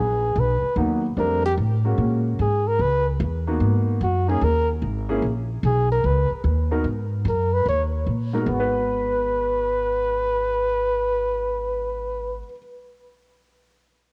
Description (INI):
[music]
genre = jazz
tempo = 148 BPM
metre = 4/4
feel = swing 66% on 8ths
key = G# minor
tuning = A4 = 438 Hz
[part]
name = trumpet with bucket mute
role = melody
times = 0.0-12.4 s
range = F#4 to C#5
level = -26 LUFS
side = equal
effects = none
[part]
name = upright bass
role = bass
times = 0.0-12.4 s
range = G#1 to A#2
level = -26 LUFS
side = equal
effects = none
[part]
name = warm concert grand piano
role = accompaniment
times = 0.8-12.6 s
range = G#2 to B4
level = -30 LUFS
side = equal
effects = cassette tape
[sound]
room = light reverb, small room ambience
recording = home recording on cassette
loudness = -22 LUFS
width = mono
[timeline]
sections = 0.0-2.0 A section; 2.0-8.5 B section; 8.5-11.7 C section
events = none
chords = 0.0 G#m7; 1.2 F; 2.0 G#9sus4; 2.8 C#m9; 3.6 G#m7; 4.4 D#7sus4; 5.2 G#madd9/A#; 6.0 C#sus2; 6.8 F#add9; 7.7 D#5; 8.5 G#m7